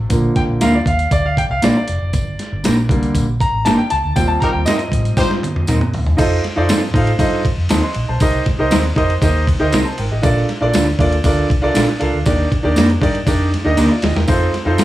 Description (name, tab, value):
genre	uptempo 1960s-style soul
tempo	119 BPM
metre	4/4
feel	straight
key	F mixolydian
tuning	A4 = 440 Hz
part	clear concert grand piano	accompaniment	0.0-14.8 s	D3 to C6	-18 LUFS	equal	none
part	vintage muted fingered electric bass	bass	0.0-14.8 s	F1 to A2	-19 LUFS	equal	none
part	dusty soul sampler-style drum kit	drums	0.1-14.8 s	crash cymbal, hi-hat, kick drum, ride cymbal, snare drum, toms	-19 LUFS	equal	none
part	tambourine	percussion	0.1-14.8 s	none	-32 LUFS	left 3 dB	none
part	mellow electric guitar	stabs	0.6-14.8 s	F3 to Bb4	-19 LUFS	right 2 dB	none
part	warm horn section	second line	4.4-5.3 s	Eb4 to C5	-22 LUFS	equal	none
room	light reverb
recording	small room ambience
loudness	-13 LUFS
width	side -15 dB against mid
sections	0.0-6.2 A section; 6.2-14.8 B section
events	grand piano solo 0.0-6.2; band accent 4.2-6.2; drum fill 5.2-6.2, 13.8-14.3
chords	0.1 Bb; 2.1 Gm; 4.2 Eb6; 6.2 F7; 8.2 Cm7; 10.2 Bbmaj7; 12.3 Ebmaj7; 14.3 F7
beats	| 0.11 0.61 1.12 1.63 | 2.13 2.64 3.15 3.66 | 4.16 4.67 5.17 5.68 | 6.19 6.69 7.20 7.71 | 8.21 8.72 9.22 9.73 | 10.24 10.74 11.25 11.75 | 12.26 12.76 13.27 13.78 | 14.28 14.79